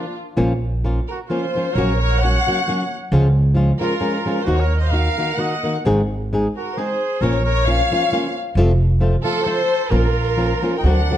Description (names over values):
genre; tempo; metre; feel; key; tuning
mexican folk, mariachi; 132 BPM; 3/4; swing 54% on 8ths, rubato; Bb minor; A4 = 440 Hz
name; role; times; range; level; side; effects
warm symphonic violin section; melody; 0.0-11.2 s; F4 to G5; -22 LUFS; left 2 dB; none
bright trumpet; second line; 0.0-11.2 s; D4 to Eb5; -28 LUFS; right 7 dB; none
flamenco guitar; accompaniment; 0.0-11.2 s; F2 to Ab4; -22 LUFS; left 1 dB; none
upright bass; bass; 0.4-11.1 s; F1 to Eb2; -18 LUFS; right 1 dB; none
room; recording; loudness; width
moderate recital hall reverb, RT60 1.3 s; dark, warm production; -16 LUFS; side -11 dB against mid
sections
0.4-11.2 A section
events
break 0.0-0.4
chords
0.4 Bbm; 1.8 Gb/Bb; 3.1 Db; 4.5 Ebm; 5.8 Ab; 7.2 Bbm; 8.6 F; 9.9 Bbm